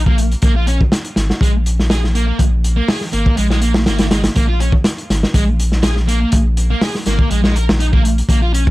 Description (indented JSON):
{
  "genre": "breakbeat, breaks",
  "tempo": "122 BPM",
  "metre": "4/4",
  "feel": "straight",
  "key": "Bb minor",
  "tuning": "A4 = 437 Hz",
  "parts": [
    { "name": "saturated sub bass", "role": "bass", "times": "0.0-8.7 s", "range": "Ab1 to Bb1", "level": "-16 LUFS", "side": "equal", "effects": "none" },
    { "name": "thick fuzz guitar", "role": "riff", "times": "0.1-8.6 s", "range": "Ab3 to Bb4", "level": "-21 LUFS", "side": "equal", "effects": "distortion, dub echo" },
    { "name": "crunchy breakbeat drum kit", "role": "drums", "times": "0.1-8.7 s", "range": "hi-hat, kick drum, snare drum", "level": "-16 LUFS", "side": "equal", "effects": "none" }
  ],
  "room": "little or no reverb",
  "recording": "vinyl crackle",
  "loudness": "-13 LUFS",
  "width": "side -18 dB against mid",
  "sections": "0.0-8.7 A section",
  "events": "none",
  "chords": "0.0 Bb7(no3)"
}